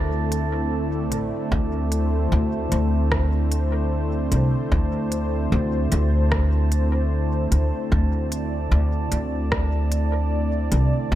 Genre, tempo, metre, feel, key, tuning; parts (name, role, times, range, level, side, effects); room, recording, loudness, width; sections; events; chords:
ambient dub; 75 BPM; 4/4; straight; A4 = 440 Hz
warm analog pad; sustained chords; 0.0-11.2 s; D3 to D5; -26 LUFS; left 1 dB; chorus
upright bass; bass; 0.0-11.2 s; A1 to D2; -21 LUFS; equal
drifting glass-harmonics texture; texture; 0.0-11.2 s; D4; -33 LUFS; right 7 dB; chorus, built-in reverb
organic electronic drum kit; drums; 0.3-10.9 s; hi-hat, rim click; -30 LUFS; equal; dub echo
electronic kick drum; drums; 1.5-11.2 s; -27 LUFS; equal; overdrive
digital ambience; -20 LUFS; side -13 dB against mid
0.0-11.2 A section
0.0 D7(no3)